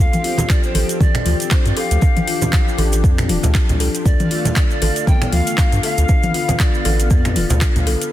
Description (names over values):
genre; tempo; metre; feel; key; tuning
afro house; 118 BPM; 4/4; swing 57% on 16ths; D dorian; A4 = 440 Hz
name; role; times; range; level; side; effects
polished pan flute; melody; 0.0-7.6 s; C5 to G5; -25 LUFS; equal; ping-pong delay
warm analog pad; sustained chords; 0.0-8.1 s; D3 to F5; -26 LUFS; left 1 dB; chorus, sidechain pumping
kalimba; arpeggios; 0.0-8.0 s; B3 to A4; -25 LUFS; left 4 dB; sidechain pumping, ping-pong delay
round analog bass; bass; 0.0-8.0 s; D1 to G2; -18 LUFS; equal; sidechain pumping
afro-pop drum kit; drums; 0.1-8.1 s; finger snaps, handclaps, hi-hat, toms; -23 LUFS; left 2 dB; soft clipping on snare
cabasa; percussion; 0.1-8.1 s; none; -30 LUFS; right 6 dB; none
congas; percussion; 0.1-7.8 s; none; -24 LUFS; right 2 dB; none
electronic kick drum; drums; 0.5-7.7 s; none; -15 LUFS; equal; none
room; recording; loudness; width
light reverb, small room ambience; dense, heavily limited modern master; -14 LUFS; side -13 dB against mid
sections
0.0-8.1 A section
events
none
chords
0.0 F; 4.1 Dm6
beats
0.50 1.00 1.51 | 2.02 2.53 3.04 3.55 | 4.06 4.56 5.07 5.58 | 6.09 6.60 7.11 7.62